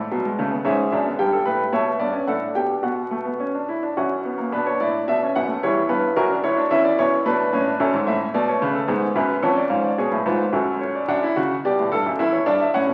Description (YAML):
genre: classical, baroque-style 4-part fugue for grand piano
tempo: 110 BPM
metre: 3/4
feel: straight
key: unclear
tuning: A4 = 441 Hz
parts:
  - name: warm baby grand piano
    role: solo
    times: 0.0-12.9 s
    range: D2 to G5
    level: -21 LUFS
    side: equal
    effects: none
room: wet recital hall reverb, RT60 1.6 s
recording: very old 78 rpm record, vinyl crackle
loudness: -21 LUFS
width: mono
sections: 0.0-4.5 A section; 4.5-11.1 B section; 11.1-12.9 C section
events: none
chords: 0.0 D; 0.6 G#dim; 1.2 G; 2.8 F#sus4/B; 4.0 F#; 4.5 Bm; 5.6 C#m7b5/E; 6.2 F#7; 7.3 Bm; 7.8 F#m; 8.9 F#sus24; 9.4 C#7/E#; 10.5 F#m; 11.1 D/F#; 12.2 Em7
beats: 0.09 0.64 | 1.18 1.72 2.27 | 2.83 3.39 3.96 | 4.52 5.07 5.62 | 6.17 6.71 7.26 | 7.80 8.34 8.88 | 9.43 9.98 10.53 | 11.09 11.64 12.19 | 12.73